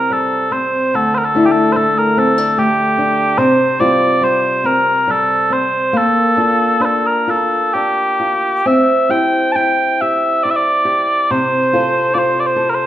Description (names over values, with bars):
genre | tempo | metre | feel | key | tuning
celtic folk, Celtic slow air | 65-76 BPM | 3/4 | rubato | C mixolydian | A4 = 439 Hz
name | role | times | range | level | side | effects
mellow small bagpipes | melody | 0.0-12.9 s | G4 to A5 | -14 LUFS | equal | none
flamenco guitar | accompaniment | 0.0-12.9 s | D2 to C5 | -17 LUFS | left 1 dB | none
room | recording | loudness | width
moderate recital hall reverb, RT60 1.4 s | minimal, uncompressed stereo recording | -12 LUFS | side -12 dB against mid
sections
0.0-12.9 A section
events
none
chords
0.0 C; 0.9 Dsus2; 3.4 Fsus2/C; 5.9 Bb; 8.6 C; 11.3 F/C